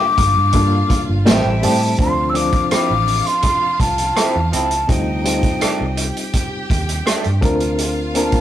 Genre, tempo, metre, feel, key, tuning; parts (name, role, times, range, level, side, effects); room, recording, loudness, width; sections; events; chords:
lush 1970s-style soul; 83 BPM; 4/4; straight; D minor; A4 = 440 Hz
breathy mellow concert flute; melody; 0.0-8.4 s; G5 to E6; -19 LUFS; left 2 dB
clear studio violin section; second line; 0.0-8.4 s; Eb4 to G5; -29 LUFS; equal
reed electric piano; accompaniment; 0.0-8.4 s; F3 to Bb4; -22 LUFS; left 1 dB; overdrive, fast tremolo
vintage muted fingered electric bass; bass; 0.2-8.3 s; G1 to A2; -21 LUFS; right 1 dB
vintage drum kit; drums; 0.2-8.4 s; hi-hat, kick drum, rim click, snare drum; -19 LUFS; right 1 dB
electric guitar through a small old amp; riff; 1.3-7.3 s; Eb3 to G4; -23 LUFS; right 4 dB; tremolo
moderate studio ambience, RT60 0.5 s; rough rehearsal-room recording, warm saturation; -14 LUFS; side -11 dB against mid
0.0-2.0 A section; 2.0-8.4 B section
0.0 Gm7; 1.3 Am7; 2.0 Dm9; 4.9 F13; 7.4 Bbmaj7